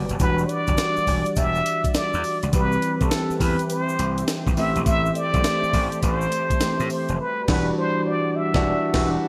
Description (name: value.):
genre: R&B, new jack swing.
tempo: 103 BPM.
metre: 4/4.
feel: swing 64% on 16ths.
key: E minor.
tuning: A4 = 440 Hz.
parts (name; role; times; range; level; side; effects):
bell-like tine electric piano; accompaniment; 0.0-9.3 s; D3 to G4; -29 LUFS; equal; subtle chorus.
sweeping resonant pad; sustained chords; 0.0-9.3 s; E3 to D5; -34 LUFS; equal; subtle chorus.
gritty slap bass; bass; 0.0-9.2 s; E1 to A2; -29 LUFS; equal; overdrive.
breakbeat sampler-style drum kit; drums; 0.1-9.2 s; crash cymbal, hi-hat, kick drum, snare drum, tambourine; -27 LUFS; equal; gated reverb.
egg shaker; percussion; 0.1-7.2 s; none; -45 LUFS; equal; none.
trumpet with plunger mute; melody; 0.2-9.2 s; A4 to E5; -27 LUFS; equal; none.
room: moderate lush hall reverb, RT60 1.8 s.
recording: bright 1980s-style digital production.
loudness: -22 LUFS.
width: mono.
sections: 0.0-9.3 A section.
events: band accent 7.2-9.3.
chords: 0.2 Em9; 2.5 Cmaj7; 4.6 Am7; 7.2 Em9.